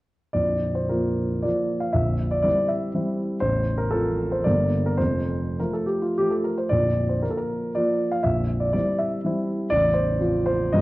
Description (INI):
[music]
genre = classical, romantic triple-time dance for piano with dotted rhythms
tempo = 98-132 BPM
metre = 3/4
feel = rubato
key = Bb major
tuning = A4 = 440 Hz
[part]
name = warm grand piano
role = solo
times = 0.3-10.8 s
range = A0 to F5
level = -21 LUFS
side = equal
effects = none
[sound]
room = wet recital hall reverb, RT60 1.4 s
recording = worn, warbling old tape, cassette tape, warbly pitch drift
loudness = -21 LUFS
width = side -19 dB against mid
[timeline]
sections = 0.4-10.8 A section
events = none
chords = 0.4 Bb5; 2.0 C7/Bb; 3.4 F/A; 4.5 Gm; 5.0 F; 6.7 Bb5; 8.2 C7/Bb; 9.7 F/A